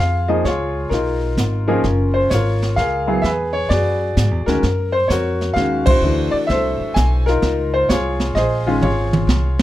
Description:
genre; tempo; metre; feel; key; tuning
jazz piano trio; 129 BPM; 3/4; swing 67% on 8ths; Db major; A4 = 440 Hz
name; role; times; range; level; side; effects
bright upright piano; melody; 0.0-9.6 s; Eb3 to Ab5; -18 LUFS; left 1 dB; none
upright bass; bass; 0.0-9.6 s; Gb1 to G#2; -20 LUFS; equal; none
jazz brush drum kit; drums; 0.4-9.6 s; brushed snare drum, hi-hat, kick drum, ride cymbal, snare drum, toms; -21 LUFS; right 2 dB; none
room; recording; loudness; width
light reverb; none; -15 LUFS; side -14 dB against mid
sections
0.0-9.6 A section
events
band accent 5.8; drum fill 8.8-9.6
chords
0.4 Db9; 1.8 Gbmaj9; 3.2 E9; 4.6 Ebm7; 6.0 D9; 7.4 Dbmaj9

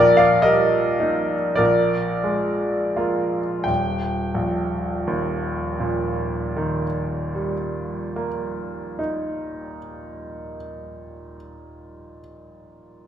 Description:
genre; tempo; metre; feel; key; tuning
classical, romantic nocturne for solo piano; 27-40 BPM (dotted quarters); 12/8; rubato; Eb major; A4 = 440 Hz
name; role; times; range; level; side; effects
clear baby grand piano; solo; 0.0-13.1 s; Eb1 to G5; -20 LUFS; equal; none
room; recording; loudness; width
wet recital hall reverb, RT60 1.6 s; minimal, uncompressed stereo recording; -20 LUFS; side -9 dB against mid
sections
0.0-3.7 A section; 3.7-11.7 B section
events
slowing down 0.0-3.7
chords
0.0 Eb/Bb; 1.6 Bb7; 3.7 Eb

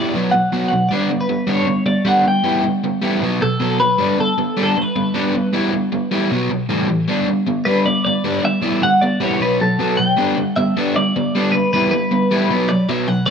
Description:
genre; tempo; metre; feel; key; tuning
rock; 155 BPM; 4/4; straight; G major; A4 = 439 Hz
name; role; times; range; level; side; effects
twelve-string electric guitar; melody; 0.0-13.3 s; A4 to G5; -19 LUFS; left 1 dB; phaser, tape echo
crunchy overdriven guitar; riff; 0.0-13.3 s; A2 to E4; -17 LUFS; equal; none
room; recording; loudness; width
light reverb, digital ambience; none; -15 LUFS; side -6 dB against mid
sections
0.0-7.1 A section; 7.1-13.3 A section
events
none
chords
0.1 B5; 0.9 G; 2.5 Em/G; 3.2 B5; 4.0 Gadd9; 5.6 Em/G; 6.3 B5; 6.7 A5; 7.1 G; 8.6 Em/G; 9.4 B5; 10.2 G; 11.7 Em/G; 12.5 B5

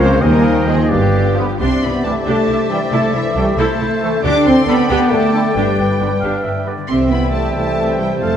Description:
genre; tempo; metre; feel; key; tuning
cinematic, heroic adventure film score; 91 BPM (dotted quarters); 6/8; straight; C major; A4 = 441 Hz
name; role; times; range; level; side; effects
rich symphonic violin section; melody; 0.0-8.4 s; G4 to D6; -27 LUFS; left 3 dB; none
bright concert flute; second line; 0.0-8.4 s; E5 to A5; -27 LUFS; left 2 dB; none
dark clarinet; second line; 0.0-8.4 s; G4 to C5; -25 LUFS; left 1 dB; none
warm oboe; second line; 0.0-8.4 s; C5 to F5; -24 LUFS; equal; none
warm symphonic violin section; second line; 0.0-8.4 s; G4 to G5; -30 LUFS; left 2 dB; none
clear symphonic viola section; accompaniment; 0.0-8.4 s; D3 to A4; -24 LUFS; right 1 dB; none
bright trombone section; sustained chords; 0.0-8.4 s; D3 to C4; -27 LUFS; right 2 dB; none
mellow French horn section; sustained chords; 0.0-8.4 s; E3 to D4; -19 LUFS; left 1 dB; none
concert harp; arpeggios; 0.0-8.4 s; F2 to A5; -24 LUFS; left 7 dB; none
warm trumpet; stabs; 0.0-8.4 s; G4 to D5; -30 LUFS; right 2 dB; none
dark symphonic cello section; bass; 0.0-8.4 s; G2 to D4; -19 LUFS; right 2 dB; none
dark tuba; bass; 0.0-1.4 s; G1 to Eb2; -20 LUFS; right 2 dB; none
rich studio double bass section; bass; 0.0-8.4 s; F1 to Eb2; -22 LUFS; right 2 dB; none
room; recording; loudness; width
wet scoring stage reverb, RT60 1.5 s; dark, warm production; -13 LUFS; side -9 dB against mid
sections
0.0-1.6 A section; 1.6-8.4 B section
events
none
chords
0.2 Ab/Eb; 0.9 G7; 1.6 Cadd9; 2.9 Am/C; 4.2 Dsus4; 5.6 G; 6.9 C

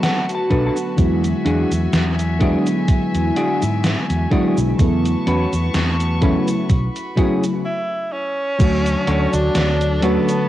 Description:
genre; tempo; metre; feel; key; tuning
vaporwave; 63 BPM; 4/4; swing 55% on 16ths; A major; A4 = 441 Hz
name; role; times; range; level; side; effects
FM electric piano with soft pad layer; accompaniment; 0.0-10.5 s; C#3 to C#5; -20 LUFS; equal; wide subtle chorus, cassette tape, analog delay
warm chamber string section; sustained chords; 0.0-10.5 s; F#4 to C#6; -29 LUFS; left 1 dB; cassette tape
semi-hollow electric guitar; riff; 0.0-10.3 s; C#4 to A5; -24 LUFS; equal; analog chorus, vintage 12-bit sampler grit, cassette tape, analog delay
gated 80s digital drum machine; drums; 0.0-10.5 s; cabasa, crash cymbal, hi-hat, snare drum; -24 LUFS; equal; gated reverb, gated reverb snare, studio reverb, cassette tape
fretless electric bass; bass; 0.5-10.2 s; B1 to G#2; -20 LUFS; equal; none
electronic kick drum; drums; 0.5-8.8 s; none; -16 LUFS; equal; studio reverb, cassette tape
edgy tenor saxophone; melody; 7.7-10.5 s; B3 to E4; -22 LUFS; right 1 dB; cassette tape
room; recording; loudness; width
moderate spring reverb, RT60 2.3 s; home recording on cassette; -16 LUFS; side -13 dB against mid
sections
0.0-8.6 A section; 8.6-10.5 B section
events
clean electric guitar fill 0.0-1.0; stop 7.6-8.6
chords
0.0 Bm7; 1.0 E9; 4.8 A69/E; 8.6 Dmaj7

